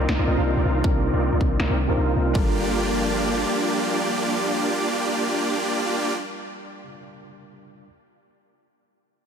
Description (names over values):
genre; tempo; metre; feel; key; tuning
future bass; 159 BPM; 4/4; swing 56% on 16ths, half-time; G minor; A4 = 440 Hz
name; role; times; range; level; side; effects
tine electric piano; accompaniment; 0.0-7.9 s; C3 to Bb4; -29 LUFS; right 2 dB; overdrive, medium stereo tremolo, sidechain pumping, tape echo
airy breathy pad; sustained chords; 0.0-6.1 s; Eb3 to D5; -32 LUFS; left 3 dB; chorus, sidechain pumping
supersaw chords; riff; 0.0-6.1 s; Bb3 to F5; -24 LUFS; right 1 dB; sidechain pumping, low-pass filter, tape echo
warm 808-style bass; bass; 0.0-3.4 s; C2; -24 LUFS; left 1 dB; sidechain pumping
electronic finger snaps and snare drum; drums; 0.1-1.7 s; none; -30 LUFS; left 1 dB; low-pass filter on snare, low-pass filter on room
electronic kick drum; drums; 0.8-2.4 s; none; -23 LUFS; equal; none
room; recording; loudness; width
light reverb, digital ambience; none; -20 LUFS; side -7 dB against mid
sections
0.0-2.4 A section; 2.4-5.4 B section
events
filter sweep on supersaw synth 0.0-2.4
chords
0.0 Cm11; 2.4 Gm7